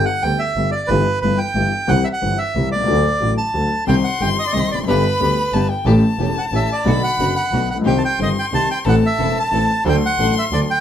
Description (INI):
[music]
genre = tango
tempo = 181 BPM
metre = 3/4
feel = rubato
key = G major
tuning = A4 = 443 Hz
[part]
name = bandoneon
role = melody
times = 0.0-10.8 s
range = B4 to A5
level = -20 LUFS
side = right 2 dB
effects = none
[part]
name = warm concert grand piano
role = accompaniment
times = 0.0-10.7 s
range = E1 to A4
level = -20 LUFS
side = left 4 dB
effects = none
[part]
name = clear double bass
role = bass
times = 0.0-10.7 s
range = E1 to D2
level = -21 LUFS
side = right 2 dB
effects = none
[part]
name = warm violin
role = second line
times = 3.9-10.8 s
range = G5 to C6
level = -24 LUFS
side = left 3 dB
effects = none
[part]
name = dark studio string section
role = stabs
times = 3.9-10.7 s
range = A3 to A4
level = -28 LUFS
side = right 2 dB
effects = none
[sound]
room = moderate studio reverb, RT60 0.7 s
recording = none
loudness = -15 LUFS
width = side -9 dB against mid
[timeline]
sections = 0.0-10.8 A section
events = none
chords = 0.0 G; 0.9 Em/G; 1.9 C; 2.9 D; 3.9 Cm; 4.9 G; 5.9 A7; 6.9 Bm; 7.9 Cm; 8.9 Am; 9.9 D